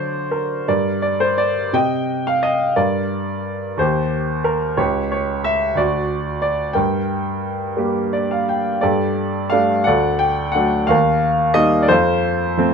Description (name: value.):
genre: classical, lyrical solo piano.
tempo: 59 BPM (dotted quarters).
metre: 6/8.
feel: rubato.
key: G minor.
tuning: A4 = 439 Hz.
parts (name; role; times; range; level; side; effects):
clear upright piano; solo; 0.0-12.7 s; C#2 to G5; -16 LUFS; equal; none.
room: light reverb.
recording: minimal, uncompressed stereo recording.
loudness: -16 LUFS.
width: side -6 dB against mid.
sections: 0.0-8.8 A section; 8.8-12.7 B section.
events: upright piano fill 7.8-8.8.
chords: 0.0 D; 0.7 Gm; 1.7 Cm; 2.8 Gm; 3.8 Eb; 4.8 C#dim; 5.8 D; 6.8 Gm; 8.8 Gsus2; 9.9 D; 10.9 Eb; 11.9 F.